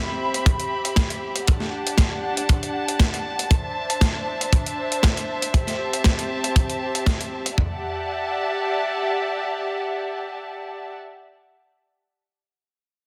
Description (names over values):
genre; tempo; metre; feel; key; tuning
nu-disco, nu disco; 118 BPM; 4/4; swing 54% on 16ths; E minor; A4 = 440 Hz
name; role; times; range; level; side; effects
muted studio violin section; sustained chords; 0.0-11.0 s; C4 to B5; -28 LUFS; equal; sidechain pumping
dusty soul sampler-style drum kit; drums; 0.3-7.6 s; hi-hat, snare drum; -29 LUFS; equal; overdrive
tight funk drum kit; drums; 0.5-7.7 s; kick drum, toms; -22 LUFS; equal; soft clipping on kick
room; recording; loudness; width
moderate echo chamber reverb, RT60 1.5 s, studio reverb; dense, heavily limited modern master; -23 LUFS; mono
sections
0.0-7.6 A section; 7.6-11.6 B section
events
none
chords
0.0 Cmaj7; 1.5 Dadd11; 3.5 C69; 5.5 Am7/C; 7.6 Em11